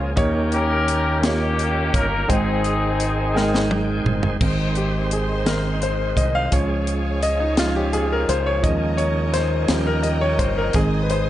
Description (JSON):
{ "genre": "slow gospel", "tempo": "57 BPM (dotted quarters)", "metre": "6/8", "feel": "straight", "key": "Ab major", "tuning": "A4 = 440 Hz", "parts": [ { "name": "clear horn section", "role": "melody", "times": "0.0-3.7 s", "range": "Bb3 to Bb4", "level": "-23 LUFS", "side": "left 3 dB", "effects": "none" }, { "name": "clear concert grand piano", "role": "accompaniment", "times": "0.0-11.3 s", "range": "Ab2 to G5", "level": "-22 LUFS", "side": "equal", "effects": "none" }, { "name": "bright tonewheel organ", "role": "sustained chords", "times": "0.0-11.3 s", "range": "Eb3 to G5", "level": "-28 LUFS", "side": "right 2 dB", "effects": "slow rotary speaker" }, { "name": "fingered electric bass", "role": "bass", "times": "0.0-11.3 s", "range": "G1 to Eb2", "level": "-24 LUFS", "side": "equal", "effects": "none" }, { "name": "tight funk drum kit", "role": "drums", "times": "0.2-11.3 s", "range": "crash cymbal, hi-hat, kick drum, snare drum, toms", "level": "-24 LUFS", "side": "equal", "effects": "none" }, { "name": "rich studio string section", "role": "sustained chords", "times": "4.4-11.3 s", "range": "C5 to Eb6", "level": "-33 LUFS", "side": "left 2 dB", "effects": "none" } ], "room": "light reverb, studio reverb", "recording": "nothing above 10.4 kHz", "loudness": "-18 LUFS", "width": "side -13 dB against mid", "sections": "0.0-4.4 A section; 4.4-11.3 B section", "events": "drum fill 3.4-4.4; tonewheel organ fill 3.4-4.4; grand piano solo 4.4-11.3", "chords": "0.2 Eb7; 2.3 Abmaj7; 4.4 Ab; 6.5 Db; 8.6 Eb7sus4; 9.7 Eb7; 10.7 Ab", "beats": "| 0.17 1.23 | 2.29 3.35 | 4.41 5.47 | 6.52 7.58 | 8.64 9.69 | 10.75" }